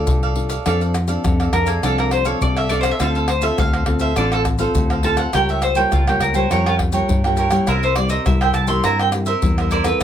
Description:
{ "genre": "samba and choro", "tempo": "103 BPM", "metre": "4/4", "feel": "straight", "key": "unclear", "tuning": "A4 = 438 Hz", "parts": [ { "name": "cavaquinho", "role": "accompaniment", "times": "0.0-10.0 s", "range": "D4 to G5", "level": "-23 LUFS", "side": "right 4 dB", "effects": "none" }, { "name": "nylon-string guitar", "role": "accompaniment", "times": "0.0-10.0 s", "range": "G2 to A4", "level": "-24 LUFS", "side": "left 3 dB", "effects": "none" }, { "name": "vintage muted fingered electric bass", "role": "bass", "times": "0.0-10.0 s", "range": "A1 to G2", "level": "-22 LUFS", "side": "equal", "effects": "none" }, { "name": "maracas, surdo, pandeiro and tamborim", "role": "percussion", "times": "0.1-10.0 s", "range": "none", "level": "-22 LUFS", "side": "left 1 dB", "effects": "none" }, { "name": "bowl-back mandolin", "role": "second line", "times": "1.5-10.0 s", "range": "F4 to C6", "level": "-20 LUFS", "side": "equal", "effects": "none" } ], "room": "moderate small room reverb, RT60 0.6 s", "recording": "none", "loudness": "-16 LUFS", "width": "side -10 dB against mid", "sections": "0.7-10.0 A section", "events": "mandolin solo 0.7-10.0", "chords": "0.0 F6; 3.0 Dm7; 5.3 Bbm6/Db; 7.7 C7", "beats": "0.08 | 0.67 1.25 1.83 2.42 | 3.00 3.59 4.17 4.76 | 5.34 5.92 6.51 7.09 | 7.68 8.26 8.85 9.43 | 10.01" }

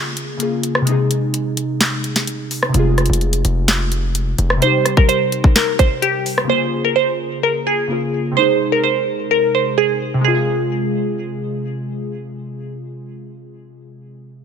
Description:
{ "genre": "hip hop, trap", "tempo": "128 BPM", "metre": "4/4", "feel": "half-time", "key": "F minor", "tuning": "A4 = 439 Hz", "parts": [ { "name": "glassy digital keys", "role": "accompaniment", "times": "0.0-14.4 s", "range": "C3 to Ab4", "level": "-21 LUFS", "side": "left 1 dB", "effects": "chorus, low-pass filter" }, { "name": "trap drum kit", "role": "drums", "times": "0.2-6.5 s", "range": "handclaps, hi-hat, kick drum, rim click, snare drum", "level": "-17 LUFS", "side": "equal", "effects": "none" }, { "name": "hard-hitting 808-style bass", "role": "bass", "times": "2.7-4.6 s", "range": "F1", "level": "-18 LUFS", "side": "equal", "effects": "none" }, { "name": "glassy wavetable pluck", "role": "melody", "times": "4.6-11.6 s", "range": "G4 to C5", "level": "-17 LUFS", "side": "right 2 dB", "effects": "chorus, low-pass filter" } ], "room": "light reverb, digital ambience", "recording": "none", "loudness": "-15 LUFS", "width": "side -7 dB against mid", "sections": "0.0-10.2 A section; 10.2-14.0 B section", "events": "break 0.0-4.6", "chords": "0.0 Bbm7; 0.9 Ab; 2.7 Fm; 4.6 Cm; 6.5 Bbm7; 8.4 Ab; 10.2 Fm", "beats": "0.40 | 0.87 1.34 1.81 2.28 | 2.75 3.21 3.68 4.15 | 4.62 5.09 5.56 6.03 | 6.50 6.96 7.43 7.90 | 8.37 8.84 9.31 9.78 | 10.24 10.71 11.18 11.65 | 12.12 12.59 13.06 13.53" }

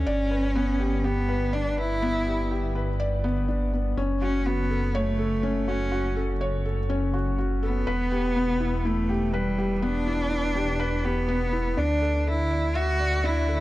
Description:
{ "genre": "piano and strings electronica", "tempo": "123 BPM", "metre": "4/4", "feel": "straight", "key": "unclear", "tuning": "A4 = 440 Hz", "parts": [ { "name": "rich cello", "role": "melody", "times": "0.0-13.6 s", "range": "G3 to F#4", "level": "-28 LUFS", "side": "equal", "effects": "none" }, { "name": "felt-muted upright piano", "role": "riff", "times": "0.0-13.6 s", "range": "B3 to E5", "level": "-29 LUFS", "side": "left 2 dB", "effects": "none" }, { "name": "dark detuned saw bass", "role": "bass", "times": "0.0-13.6 s", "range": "E1 to D2", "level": "-27 LUFS", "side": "equal", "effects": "none" } ], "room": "light reverb", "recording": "dark, warm production", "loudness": "-23 LUFS", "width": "side -16 dB against mid", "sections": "0.0-13.6 A section", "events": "none", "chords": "0.1 G; 4.0 F#m; 7.9 Em7; 11.8 Dsus2", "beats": "| 0.07 0.56 1.04 1.53 | 2.02 2.51 3.00 3.48 | 3.97 4.46 4.95 5.43 | 5.92 6.41 6.90 7.38 | 7.87 8.36 8.85 9.34 | 9.82 10.31 10.80 11.29 | 11.78 12.26 12.75 13.24" }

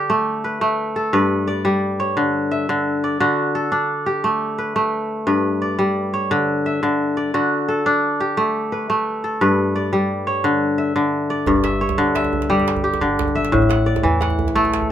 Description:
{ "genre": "west african traditional, West African string and xylophone music", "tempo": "116 BPM (dotted quarters)", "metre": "12/8", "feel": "straight", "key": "unclear", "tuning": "A4 = 438 Hz", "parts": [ { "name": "kora", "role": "arpeggios", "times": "0.0-14.9 s", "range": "G2 to F#5", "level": "-17 LUFS", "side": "equal", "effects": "none" }, { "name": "upright bass", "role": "bass", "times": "11.5-14.9 s", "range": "G1 to E2", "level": "-25 LUFS", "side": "right 1 dB", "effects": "none" }, { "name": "djembe", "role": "percussion", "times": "11.5-14.9 s", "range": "none", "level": "-26 LUFS", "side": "right 6 dB", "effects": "none" } ], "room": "moderate studio ambience, RT60 0.5 s", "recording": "minimal, uncompressed stereo recording", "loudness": "-17 LUFS", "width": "side -10 dB against mid", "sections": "0.0-11.5 A section; 11.5-14.9 B section", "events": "none", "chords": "0.0 D5; 1.1 G; 3.2 D; 5.3 G; 7.3 D; 9.4 G; 11.5 G5; 13.5 A5", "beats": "0.10 0.62 | 1.13 1.65 2.17 2.69 | 3.20 3.72 4.24 4.75 | 5.27 5.79 6.31 6.82 | 7.34 7.86 8.38 8.89 | 9.41 9.93 10.44 10.96 | 11.47 11.99 12.50 13.02 | 13.53 14.05 14.56" }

